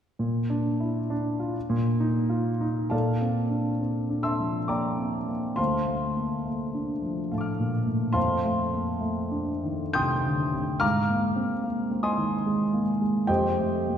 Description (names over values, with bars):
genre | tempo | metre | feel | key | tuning
classical, impressionist solo piano | 62-74 BPM | 3/4 | rubato | Bb major | A4 = 440 Hz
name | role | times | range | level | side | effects
clear concert grand piano | solo | 0.2-14.0 s | D2 to G6 | -24 LUFS | equal | none
room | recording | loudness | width
wet concert hall reverb, RT60 2.2 s | heard from further back in the room | -24 LUFS | side -9 dB against mid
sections
0.2-2.9 A section; 2.9-14.0 B section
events
none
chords
0.2 Bb; 1.6 F7sus4/Bb; 2.9 Bbmaj9; 5.6 Dm7; 8.2 F13; 10.8 Abadd9; 13.3 F9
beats
| 0.20 1.11 2.00 | 2.93 3.82 4.70 | 5.58 6.46 7.32 | 8.16 9.01 9.94 | 10.82 11.64 12.45 | 13.29